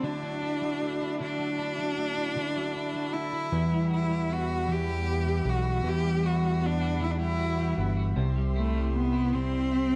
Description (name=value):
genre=six-eight pop ballad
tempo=52 BPM (dotted quarters)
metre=6/8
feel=straight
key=unclear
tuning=A4 = 442 Hz
part: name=clear cello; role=melody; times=0.0-10.0 s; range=A3 to G4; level=-33 LUFS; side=equal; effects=slapback echo
part: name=twelve-string electric guitar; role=accompaniment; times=0.0-10.0 s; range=C3 to F#4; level=-35 LUFS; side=equal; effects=double-tracked
part: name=warm studio string section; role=sustained chords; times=0.0-10.0 s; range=G3 to C6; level=-41 LUFS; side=equal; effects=none
part: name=fat analog bass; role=bass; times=3.5-10.0 s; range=G1 to E2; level=-31 LUFS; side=equal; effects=none
room=small room ambience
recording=dry, close 1970s-style studio recording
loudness=-28 LUFS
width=mono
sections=0.0-10.0 A section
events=none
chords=0.0 Dadd9; 3.5 Emadd9; 8.2 C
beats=0.05 | 1.21 2.37 | 3.52 4.68 | 5.84 7.00 | 8.16 9.32